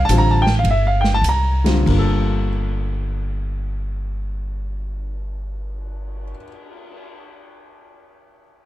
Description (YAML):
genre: modal jazz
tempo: 92 BPM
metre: 4/4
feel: swing 67% on 8ths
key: G minor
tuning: A4 = 441 Hz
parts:
  - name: upright bass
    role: bass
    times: 0.0-6.3 s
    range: G1 to C2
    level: -20 LUFS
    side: equal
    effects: none
  - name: warm baby grand piano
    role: accompaniment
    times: 0.1-6.5 s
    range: G2 to Bb5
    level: -20 LUFS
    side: left 1 dB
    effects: none
  - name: swinging big-band drum kit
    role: drums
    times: 0.1-7.0 s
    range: crash cymbal, cymbal swell, hi-hat, kick drum, ride cymbal, snare drum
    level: -28 LUFS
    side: right 2 dB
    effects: none
room: little or no reverb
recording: close, detailed microphones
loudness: -17 LUFS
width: side -15 dB against mid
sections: 0.0-1.9 A section; 1.9-7.1 B section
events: slowing down 0.0-1.9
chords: 0.0 Fsus2; 1.9 Gm9